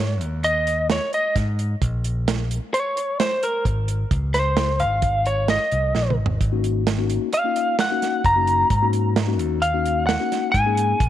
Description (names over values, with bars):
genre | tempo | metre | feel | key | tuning
progressive instrumental, band music in an uneven meter | 131 BPM | 5/4 | straight | Ab mixolydian | A4 = 440 Hz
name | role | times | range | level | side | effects
lightly driven lead guitar | melody | 0.0-11.1 s | Bb4 to Bb5 | -21 LUFS | equal | tape echo
picked electric bass | bass | 0.0-11.1 s | Gb1 to Ab2 | -23 LUFS | equal | none
deep reggae drum kit | drums | 0.2-11.1 s | hi-hat, kick drum, snare drum, toms | -25 LUFS | right 3 dB | none
mellow tine electric piano | accompaniment | 6.5-11.0 s | Bb3 to Ab4 | -26 LUFS | left 12 dB | none
room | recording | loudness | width
light reverb, small room ambience | 1960s-style stereo | -19 LUFS | side -11 dB against mid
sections
0.0-11.1 A section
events
lead electric guitar solo 0.0-11.1; drum fill 5.9-6.4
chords
0.0 Absus4; 1.8 Bb7(no3); 4.1 Dbmaj9; 6.4 Ab9sus4